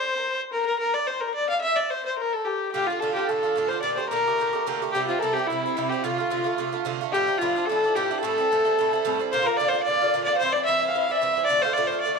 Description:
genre	celtic folk, Celtic reel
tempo	219 BPM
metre	4/4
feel	swing 53% on 8ths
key	D minor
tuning	A4 = 440 Hz
part	warm fiddle	melody	0.0-12.2 s	E4 to F5	-24 LUFS	equal	none
part	dark erhu	second line	0.0-12.2 s	E4 to F5	-29 LUFS	left 11 dB	none
part	Irish bouzouki	accompaniment	2.7-12.2 s	G2 to G4	-28 LUFS	right 14 dB	none
room	moderate echo chamber reverb, RT60 1.5 s, studio reverb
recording	1960s-style stereo with parts hard left and right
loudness	-22 LUFS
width	side -4 dB against mid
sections	0.0-7.1 A section; 7.1-12.2 A section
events	none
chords	0.0 N.C.; 2.8 Dm; 3.8 Gmadd9; 4.9 C; 6.0 Dm7; 7.1 Dmadd9; 8.2 C6; 9.3 Bb; 10.4 C; 11.5 Dm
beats	0.01 0.29 | 0.56 0.83 1.11 1.38 | 1.66 1.93 2.21 2.48 | 2.75 3.03 3.30 3.57 | 3.85 4.12 4.39 4.67 | 4.94 5.21 5.49 5.76 | 6.04 6.31 6.58 6.86 | 7.13 7.40 7.67 7.95 | 8.22 8.49 8.77 9.04 | 9.31 9.59 9.86 10.13 | 10.41 10.68 10.95 11.23 | 11.50 11.77 12.05

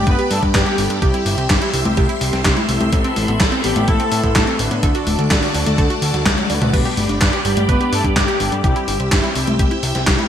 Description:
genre	italo disco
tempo	126 BPM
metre	4/4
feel	straight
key	G major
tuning	A4 = 441 Hz
part	analog synth brass	melody	0.0-9.3 s	D3 to B4	-22 LUFS	equal	chorus, cassette tape, ping-pong delay
part	phased string machine	sustained chords	0.0-10.3 s	F#4 to E6	-25 LUFS	equal	ensemble chorus, phaser
part	analog pluck	arpeggios	0.0-10.2 s	F#3 to D5	-26 LUFS	right 4 dB	chorus, ping-pong delay
part	mellow synth brass	stabs	0.0-10.3 s	G3 to B4	-25 LUFS	left 3 dB	chorus
part	fat analog bass	bass	0.0-10.2 s	D1 to A2	-22 LUFS	equal	none
part	electronic kick drum	drums	0.1-10.2 s	none	-19 LUFS	equal	none
part	gated 80s digital drum machine	drums	0.1-10.3 s	congas, crash cymbal, handclaps, hi-hat, snare drum, toms	-19 LUFS	left 1 dB	gated reverb, gated reverb snare, overdrive
room	light reverb, digital ambience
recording	bright 1980s-style digital production, vinyl crackle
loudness	-14 LUFS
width	side -9 dB against mid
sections	0.0-10.3 A section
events	drum fill 6.3-6.7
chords	0.0 G; 1.0 C; 2.9 Amadd9; 4.8 D; 6.7 G; 8.6 C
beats	0.07 0.55 | 1.02 1.50 1.97 2.45 | 2.93 3.40 3.88 4.35 | 4.83 5.31 5.78 6.26 | 6.74 7.21 7.69 8.16 | 8.64 9.12 9.59 10.07

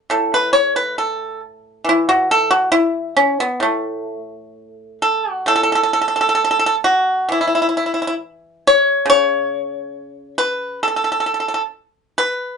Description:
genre	chinese traditional, Chinese solo plucked strings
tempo	64-71 BPM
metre	2/4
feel	rubato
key	A gong mode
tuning	A4 = 441 Hz
part	pipa	solo	0.1-12.6 s	A2 to C#5	-15 LUFS	equal	none
room	moderate studio ambience, RT60 0.5 s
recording	band playing live in one room, nothing above 10.6 kHz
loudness	-15 LUFS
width	side -6 dB against mid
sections	0.0-5.5 A section; 5.5-12.6 B section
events	none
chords	none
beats	| 0.11 1.00 | 1.87 2.73 | 3.63 4.55 | 5.49 6.42 | 7.33 8.23 | 9.09 9.94 | 10.82 11.72

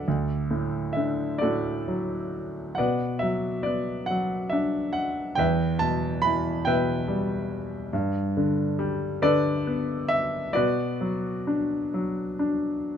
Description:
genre	classical, lyrical solo piano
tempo	43-48 BPM (dotted quarters)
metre	6/8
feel	rubato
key	B minor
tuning	A4 = 440 Hz
part	clear grand piano	solo	0.0-13.0 s	D2 to B5	-24 LUFS	equal	none
room	moderate studio reverb, RT60 0.6 s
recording	none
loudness	-24 LUFS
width	side -8 dB against mid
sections	0.0-13.0 A section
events	none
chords	0.1 D; 2.8 Bm; 5.4 Em; 7.9 Gadd9; 10.5 Bm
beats	| 0.06 1.42 | 2.78 4.10 | 5.39 6.66 | 7.93 9.22 | 10.54 11.92

